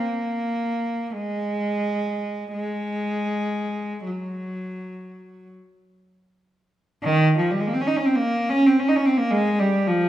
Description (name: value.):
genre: classical, free, expressive piece for unaccompanied cello.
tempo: 32-55 BPM.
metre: 3/4.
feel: rubato.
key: unclear.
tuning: A4 = 440 Hz.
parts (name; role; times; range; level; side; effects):
warm cello; solo; 0.0-10.1 s; Eb3 to Eb4; -21 LUFS; equal; none.
room: wet recital hall reverb, RT60 1.6 s.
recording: dark, warm production.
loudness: -21 LUFS.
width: side -12 dB against mid.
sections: 0.0-7.0 A section; 7.0-10.1 B section.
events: none.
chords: none.